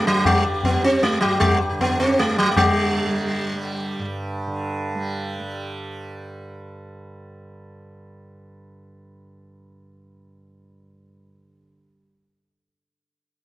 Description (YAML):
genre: indian classical, Hindustani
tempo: 157 BPM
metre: 4/4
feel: straight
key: unclear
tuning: A4 = 440 Hz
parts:
  - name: sitar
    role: melody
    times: 0.0-4.1 s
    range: F#3 to G4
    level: -19 LUFS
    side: right 1 dB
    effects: none
  - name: tanpura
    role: drone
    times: 0.0-11.9 s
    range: G2 to G3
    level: -31 LUFS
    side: right 2 dB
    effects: none
  - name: tabla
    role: percussion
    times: 0.0-2.7 s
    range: none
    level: -22 LUFS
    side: left 2 dB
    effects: none
room: small room ambience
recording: dry, close 1970s-style studio recording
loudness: -19 LUFS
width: side -16 dB against mid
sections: 0.0-2.6 A section; 2.6-5.6 B section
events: speeding up 0.0-5.6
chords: none